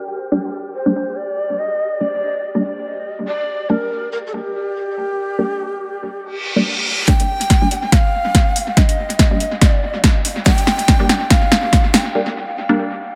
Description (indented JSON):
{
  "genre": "deep dubstep",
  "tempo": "142 BPM",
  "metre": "4/4",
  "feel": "swing 56% on 16ths, half-time",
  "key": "G minor",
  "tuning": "A4 = 441 Hz",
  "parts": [
    { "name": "flickering grainy texture", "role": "texture", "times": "0.0-7.1 s", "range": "G4", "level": "-36 LUFS", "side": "equal", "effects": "built-in reverb" },
    { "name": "filtered dub chord stab", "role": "stabs", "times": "0.3-12.8 s", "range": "G3 to D4", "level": "-24 LUFS", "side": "equal", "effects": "phaser, dub echo" },
    { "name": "breathy long shakuhachi", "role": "melody", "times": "0.7-12.1 s", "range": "G4 to G5", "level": "-24 LUFS", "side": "equal", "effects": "dub echo" },
    { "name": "reverse cymbal", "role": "sound effects", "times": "6.4-7.1 s", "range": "none", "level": "-23 LUFS", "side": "equal", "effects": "none" },
    { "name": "deep house drum kit", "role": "drums", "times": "7.1-12.0 s", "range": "hi-hat, snare drum", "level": "-20 LUFS", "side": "equal", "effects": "overdrive, low-pass filter on snare, low-pass filter on hats, dub echo" },
    { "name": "electronic kick drum", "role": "drums", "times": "7.1-11.8 s", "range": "none", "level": "-16 LUFS", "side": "equal", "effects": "overdrive" }
  ],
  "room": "moderate spring reverb, RT60 2.1 s",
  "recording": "echo-heavy mix, low-pass filter",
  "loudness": "-17 LUFS",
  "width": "mono",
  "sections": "0.0-7.1 A section; 7.1-13.2 B section",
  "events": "filter sweep 0.0-7.1; reverse cymbal 6.4-7.1; build-up 7.1-13.2; drum fill 7.1-12.2; filter sweep on synth stab 7.1-13.2; break 12.2-13.2",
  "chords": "0.0 Gm"
}